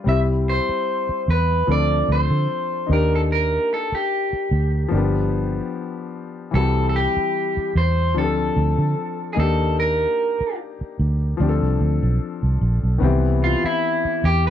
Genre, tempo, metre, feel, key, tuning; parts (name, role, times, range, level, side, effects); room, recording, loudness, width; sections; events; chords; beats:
lush 1970s-style soul; 74 BPM; 4/4; swing 54% on 16ths; A4 = 440 Hz
clear concert grand piano; accompaniment; 0.0-14.5 s; Eb3 to A4; -25 LUFS; left 6 dB
electric guitar through a small old amp; melody; 0.1-14.5 s; E4 to E5; -22 LUFS; right 1 dB
vintage muted fingered electric bass; bass; 0.1-14.5 s; G1 to D3; -20 LUFS; right 1 dB
small room ambience; dry, close 1970s-style studio recording; -18 LUFS; side -10 dB against mid
0.0-13.0 A section; 13.0-14.5 B section
clean electric guitar solo 13.0-14.5
0.1 C; 1.7 Dm7; 2.9 Ebmaj7; 4.9 G7; 6.5 C; 8.2 Dm7; 9.4 Ebmaj7; 11.4 Dm7; 13.0 Cmaj7
| 0.07 0.88 1.68 2.49 | 3.30 4.11 4.92 5.73 | 6.54 7.35 8.16 8.97 | 9.78 10.59 11.40 12.21 | 13.02 13.83